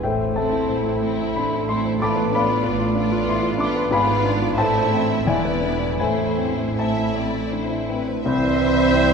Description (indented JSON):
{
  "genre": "classical, romantic movement for piano and orchestra",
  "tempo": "76-96 BPM",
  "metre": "3/4",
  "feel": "rubato",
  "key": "A minor",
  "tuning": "A4 = 439 Hz",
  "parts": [
    { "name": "clear grand piano", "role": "melody", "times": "0.0-9.1 s", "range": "C2 to D6", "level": "-21 LUFS", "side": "left 2 dB", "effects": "none" },
    { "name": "rich studio cello section", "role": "bass", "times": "0.0-9.1 s", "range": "C2 to A2", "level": "-28 LUFS", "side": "right 4 dB", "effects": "none" },
    { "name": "rich symphonic double bass section", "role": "bass", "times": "0.0-9.1 s", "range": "E1 to C2", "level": "-28 LUFS", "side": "right 4 dB", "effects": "none" },
    { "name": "rich symphonic violin section", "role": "second line", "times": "0.3-9.1 s", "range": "E4 to C5", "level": "-30 LUFS", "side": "left 2 dB", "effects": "none" },
    { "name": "warm symphonic viola section", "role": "accompaniment", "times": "0.3-9.1 s", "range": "A3 to C5", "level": "-28 LUFS", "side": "right 3 dB", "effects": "none" },
    { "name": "warm symphonic violin section", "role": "melody", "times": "0.4-9.1 s", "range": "A4 to E5", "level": "-32 LUFS", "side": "left 4 dB", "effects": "none" },
    { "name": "mellow bassoon", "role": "accompaniment", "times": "8.2-9.1 s", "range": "G3", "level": "-26 LUFS", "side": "left 4 dB", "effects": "none" },
    { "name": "bright clarinet", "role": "second line", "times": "8.3-9.1 s", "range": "C4 to E4", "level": "-27 LUFS", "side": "right 8 dB", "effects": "none" },
    { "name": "bright oboe", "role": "second line", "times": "8.3-9.1 s", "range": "C5", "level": "-27 LUFS", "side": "right 3 dB", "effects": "none" },
    { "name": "bright small flute group", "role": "second line", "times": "8.3-9.1 s", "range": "C5", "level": "-27 LUFS", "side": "left 1 dB", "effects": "none" },
    { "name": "dark French horn section", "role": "sustained chords", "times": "8.3-9.1 s", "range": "E3", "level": "-27 LUFS", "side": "left 1 dB", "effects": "none" }
  ],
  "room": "wet church reverb, RT60 3.2 s",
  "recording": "recorded in a church or concert hall",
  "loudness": "-18 LUFS",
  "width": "side -6 dB against mid",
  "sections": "0.0-8.3 A section",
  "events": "none",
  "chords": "0.0 Am; 2.0 Bm7b5/A; 3.9 G#dim7; 4.6 Am; 5.3 E7; 6.0 Am; 8.3 C"
}